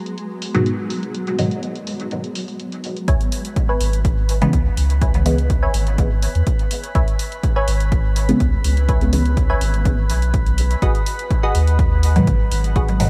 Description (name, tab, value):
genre	dub techno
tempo	124 BPM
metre	4/4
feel	straight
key	C# minor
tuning	A4 = 439 Hz
part	granular cloud pad	sustained chords	0.0-3.0 s	F#3 to B3	-31 LUFS	equal	built-in reverb, ensemble chorus, sidechain pumping
part	electronic hi-hat	drums	0.1-13.1 s	none	-33 LUFS	equal	low-pass filter on hats, low-pass filter on room
part	filtered dub chord stab	stabs	0.5-1.5, 4.4-5.4, 8.3-9.2, 12.2-13.1 s	G#2 to B3	-24 LUFS	equal	phaser, sidechain pumping, dub echo
part	wavetable chord stab	riff	3.1-12.9 s	F#4 to G#5	-30 LUFS	equal	subtle chorus, sidechain pumping, dub echo
part	soft dub sub bass	bass	3.1-13.1 s	G#1 to E2	-21 LUFS	equal	sidechain pumping
part	electronic kick drum	drums	3.1-12.9 s	none	-21 LUFS	equal	none
part	drifting glass-harmonics texture	texture	3.3-13.1 s	B4	-33 LUFS	equal	chorus, built-in reverb, sidechain pumping
room	light reverb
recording	none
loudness	-19 LUFS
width	mono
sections	0.0-3.1 A section; 3.1-13.1 B section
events	none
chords	0.0 G#m7; 3.1 C#m7; 10.8 G#m7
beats	0.18 0.66 | 1.15 1.63 2.11 2.60 | 3.08 3.56 4.05 4.53 | 5.02 5.50 5.98 6.47 | 6.95 7.43 7.92 8.40 | 8.89 9.37 9.85 10.34 | 10.82 11.31 11.79 12.27 | 12.76